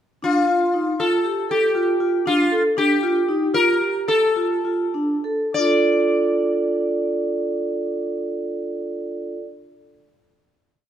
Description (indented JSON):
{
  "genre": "contemporary instrumental, contemporary",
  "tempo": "189-237 BPM (eighths)",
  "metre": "5/8",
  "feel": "straight",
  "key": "D minor",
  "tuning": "A4 = 440 Hz",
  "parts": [
    { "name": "sitar", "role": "melody", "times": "0.2-9.3 s", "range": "F4 to D5", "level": "-22 LUFS", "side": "left 4 dB", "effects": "none" },
    { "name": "vibraphone with medium mallets", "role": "arpeggios", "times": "0.2-9.4 s", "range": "D4 to D5", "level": "-20 LUFS", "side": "right 1 dB", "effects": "none" }
  ],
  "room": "moderate recital hall reverb, RT60 1.7 s",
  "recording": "close, detailed microphones",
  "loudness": "-18 LUFS",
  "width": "side -10 dB against mid",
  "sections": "0.2-5.5 A section; 5.5-8.7 final chord",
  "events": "slowing down 2.8-5.5",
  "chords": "0.2 Dm; 2.8 Gm; 4.1 Dm"
}